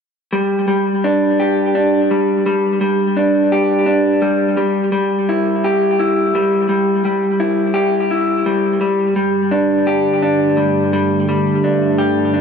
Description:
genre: rock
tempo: 57 BPM (dotted quarters)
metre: 6/8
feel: straight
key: unclear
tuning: A4 = 442 Hz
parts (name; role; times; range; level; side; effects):
- electric guitar through a small old amp; arpeggios; 0.3-12.4 s; G3 to G4; -14 LUFS; equal; digital delay, slapback echo
- sweeping resonant pad; sustained chords; 8.8-12.4 s; G2 to A3; -21 LUFS; right 2 dB; chorus, phaser
room: wet scoring stage reverb, RT60 1.6 s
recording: big arena sound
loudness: -14 LUFS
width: side -6 dB against mid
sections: 0.3-12.4 A section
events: none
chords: 0.3 G5; 4.6 Em/G; 8.8 Gsus2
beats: | 0.33 1.39 | 2.45 3.51 | 4.57 5.63 | 6.69 7.75 | 8.81 9.87 | 10.93 11.99

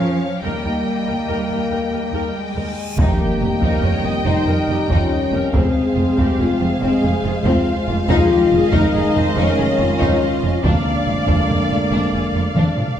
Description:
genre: cinematic, epic orchestral film score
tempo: 94 BPM (dotted quarters)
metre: 12/8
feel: straight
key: unclear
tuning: A4 = 438 Hz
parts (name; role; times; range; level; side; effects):
- warm symphonic violin section; melody; 0.0-13.0 s; F5 to G5; -28 LUFS; left 3 dB; none
- rich symphonic violin section; second line; 0.0-13.0 s; C4 to Eb5; -26 LUFS; left 2 dB; none
- rich symphonic viola section; accompaniment; 0.0-12.8 s; Eb4 to Eb5; -27 LUFS; equal; none
- mellow French horn section; sustained chords; 0.0-12.6 s; Ab3 to F4; -21 LUFS; left 4 dB; none
- dark symphonic cello section; bass; 0.0-12.6 s; F2 to G3; -25 LUFS; right 2 dB; none
- rich symphonic double bass section; bass; 0.0-12.6 s; F1 to F2; -23 LUFS; right 2 dB; none
- reverse cymbal and impact; sound effects; 2.5-5.5 s; none; -29 LUFS; equal; none
- mellow trombone section; sustained chords; 3.0-13.0 s; C3 to Ab3; -25 LUFS; right 3 dB; none
- taiko ensemble; drums; 3.0-13.0 s; none; -21 LUFS; equal; none
- timpani; percussion; 3.0-3.6, 8.1-8.7 s; F2; -27 LUFS; left 1 dB; none
room: wet recital hall reverb, RT60 1.6 s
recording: heard from further back in the room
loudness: -15 LUFS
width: side -10 dB against mid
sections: 0.0-3.0 A section; 3.0-13.0 B section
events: reverse cymbal 2.5-3.0; impact 3.0-5.5; drum fill 12.6-13.0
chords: 0.4 Eb; 3.0 Eb/F; 5.5 Fm; 8.1 Dbadd9/F; 10.6 Bb7/F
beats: | 0.43 1.07 1.71 2.35 | 2.99 3.62 4.26 4.90 | 5.54 6.18 6.82 7.45 | 8.09 8.73 9.37 10.01 | 10.65 11.28 11.92 12.56

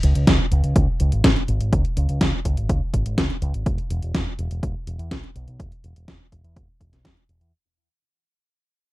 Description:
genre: italo disco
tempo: 124 BPM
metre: 4/4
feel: straight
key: E major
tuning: A4 = 444 Hz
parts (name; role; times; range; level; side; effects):
- picked electric bass with an envelope filter; bass; 0.0-7.5 s; E1 to E2; -22 LUFS; equal; none
- gated 80s digital drum machine; drums; 0.0-7.5 s; hi-hat, snare drum; -22 LUFS; equal; gated reverb, gated reverb snare, overdrive
- electronic kick drum; drums; 0.3-7.1 s; none; -23 LUFS; equal; overdrive
room: little or no reverb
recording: dry, close 1970s-style studio recording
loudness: -19 LUFS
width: side -18 dB against mid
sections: 0.0-7.5 A section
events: fade-out 0.0-7.5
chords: none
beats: 0.27 0.76 1.24 | 1.73 2.21 2.69 3.18 | 3.66 4.14 4.63 5.11 | 5.60 6.08 6.56 7.05

